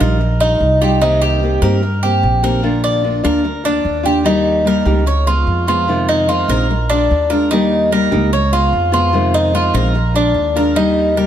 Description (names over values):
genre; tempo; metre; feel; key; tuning
latin; 148 BPM; 4/4; straight; Eb major; A4 = 440 Hz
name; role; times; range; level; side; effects
nylon-string guitar; accompaniment; 0.0-11.3 s; C3 to G4; -18 LUFS; left 1 dB; none
Cuban tres; arpeggios; 0.0-11.3 s; D4 to D5; -16 LUFS; right 1 dB; none
upright bass; bass; 0.0-11.3 s; Bb1 to G2; -17 LUFS; equal; none
room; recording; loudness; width
moderate plate reverb, RT60 2.8 s; heard from further back in the room; -12 LUFS; side -10 dB against mid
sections
0.0-4.3 A section; 4.3-11.3 B section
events
none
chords
0.0 Ebadd9; 1.0 Cm7; 2.6 Bb; 4.3 Eb; 5.1 Db7; 5.9 Fm7; 6.7 Bb7; 7.5 Eb; 8.3 Db7; 9.1 Fm7; 9.9 Bb7; 10.8 Eb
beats
0.20 0.61 | 1.02 1.42 1.83 2.23 | 2.64 3.04 3.45 3.85 | 4.26 4.66 5.07 5.47 | 5.88 6.29 6.69 7.10 | 7.51 7.91 8.32 8.73 | 9.13 9.54 9.95 10.36 | 10.77 11.17